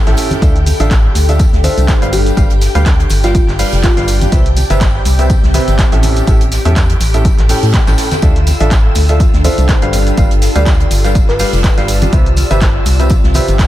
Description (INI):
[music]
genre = piano house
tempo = 123 BPM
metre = 4/4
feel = swing 56% on 16ths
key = D dorian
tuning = A4 = 438 Hz
[part]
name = string machine, violins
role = sustained chords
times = 0.0-13.7 s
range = F4 to E6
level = -24 LUFS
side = equal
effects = ensemble chorus, vintage 12-bit sampler grit, sidechain pumping
[part]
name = ethereal airy pad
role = texture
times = 0.0-13.7 s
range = C4 to B5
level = -23 LUFS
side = left 1 dB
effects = ensemble chorus, built-in reverb, sidechain pumping
[part]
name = clear baby grand piano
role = riff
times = 0.1-13.5 s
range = A2 to G5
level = -19 LUFS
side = right 1 dB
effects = sidechain pumping, dub echo
[part]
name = organ-like FM bass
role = bass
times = 0.1-13.6 s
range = F1 to A2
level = -13 LUFS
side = equal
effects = sidechain pumping
[part]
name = open jazz drum kit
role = drums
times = 0.1-13.7 s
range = hi-hat, snare drum, tambourine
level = -28 LUFS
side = right 1 dB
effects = high-pass filter on hats, high-pass filter on snare, high-pass filter on perc, high-pass filter on room, dub echo
[part]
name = punchy analog drum machine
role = drums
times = 0.1-13.7 s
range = handclaps, hi-hat, shaker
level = -22 LUFS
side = right 1 dB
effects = none
[part]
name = tambourine and congas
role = percussion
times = 0.2-13.7 s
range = none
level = -24 LUFS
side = right 1 dB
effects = none
[part]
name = electronic kick drum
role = drums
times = 0.4-13.7 s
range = none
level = -12 LUFS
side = equal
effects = none
[part]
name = bell-like FM electric piano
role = melody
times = 1.6-4.4, 9.4-12.0 s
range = F4 to D5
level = -21 LUFS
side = equal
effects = chorus, cassette tape, dub echo
[sound]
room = studio reverb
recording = echo-heavy mix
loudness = -9 LUFS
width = side -14 dB against mid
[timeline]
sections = 0.0-13.7 A section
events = none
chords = 0.4 Dmadd9; 2.1 G7; 4.3 Cmaj7; 6.0 A7; 8.2 Dmadd9; 9.9 G7; 12.1 Cmaj7